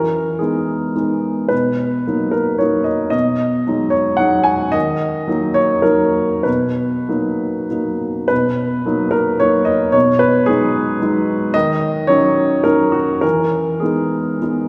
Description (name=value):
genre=neoclassical minimalist piano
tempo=94-115 BPM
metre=3/4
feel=rubato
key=B major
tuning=A4 = 440 Hz
part: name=warm upright piano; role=solo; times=0.0-14.7 s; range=B2 to G#5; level=-17 LUFS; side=equal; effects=none
room=wet concert hall reverb, RT60 2.3 s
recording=recorded in a church or concert hall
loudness=-17 LUFS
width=mono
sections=0.0-8.3 A section; 8.3-14.7 A section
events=none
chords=0.0 Emaj7; 1.5 Bmaj7; 3.1 G#m7/B; 4.7 D#m; 6.5 Bmaj7; 9.9 G#m7/B; 11.5 D#m7; 13.2 Emaj7